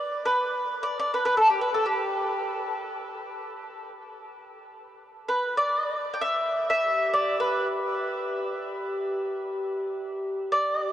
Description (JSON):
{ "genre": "world meditative, free-time meditation music", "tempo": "free time", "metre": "none", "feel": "none", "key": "G major pentatonic", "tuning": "A4 = 438 Hz", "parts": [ { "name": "mandolin", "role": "melody", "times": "0.0-10.9 s", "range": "G4 to G5", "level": "-25 LUFS", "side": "equal", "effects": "none" }, { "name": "glass harmonica", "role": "texture", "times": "6.8-10.9 s", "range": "G4", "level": "-31 LUFS", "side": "equal", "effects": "none" } ], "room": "wet huge ambient reverb, RT60 8.1 s", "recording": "worn, warbling old tape, cassette tape, warbly pitch drift", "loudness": "-24 LUFS", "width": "side -12 dB against mid", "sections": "0.0-10.9 A section", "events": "none", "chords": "none", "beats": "free time" }